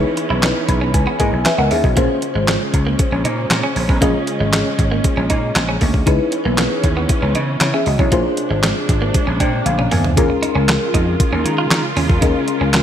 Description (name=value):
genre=early-eighties boogie funk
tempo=117 BPM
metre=4/4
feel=straight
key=unclear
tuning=A4 = 440 Hz
part: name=FM electric piano with soft pad layer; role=accompaniment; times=0.0-12.8 s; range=Db4 to Cb6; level=-20 LUFS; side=left 2 dB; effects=chorus
part: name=dark studio string section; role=sustained chords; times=0.0-12.8 s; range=C3 to F4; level=-25 LUFS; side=right 3 dB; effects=none
part: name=clean electric guitar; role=riff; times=0.2-12.7 s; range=Ab3 to F4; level=-24 LUFS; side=right 3 dB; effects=lush chorus
part: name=crisp 8-bit digital drum machine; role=drums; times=0.2-12.8 s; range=handclaps, hi-hat, kick drum, snare drum, toms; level=-18 LUFS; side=equal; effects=overdrive
part: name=vintage slap bass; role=bass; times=0.3-12.8 s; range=Ab1 to Eb3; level=-20 LUFS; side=equal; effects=none
room=moderate lush hall reverb, RT60 1.9 s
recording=bright 1980s-style digital production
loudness=-14 LUFS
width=side -9 dB against mid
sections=0.0-10.2 A section; 10.2-12.8 B section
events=FM electric piano fill 0.4-2.0, 9.1-10.2; drum fill 9.7-10.2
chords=0.0 Dbm9; 2.0 Bbm9; 6.1 Dbm9; 8.1 Bb9; 10.2 Eb9sus4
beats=0.43 0.94 1.45 | 1.97 2.48 2.99 3.50 | 4.02 4.53 5.04 5.56 | 6.07 6.58 7.09 7.61 | 8.12 8.63 9.15 9.66 | 10.17 10.69 11.20 11.71 | 12.22 12.74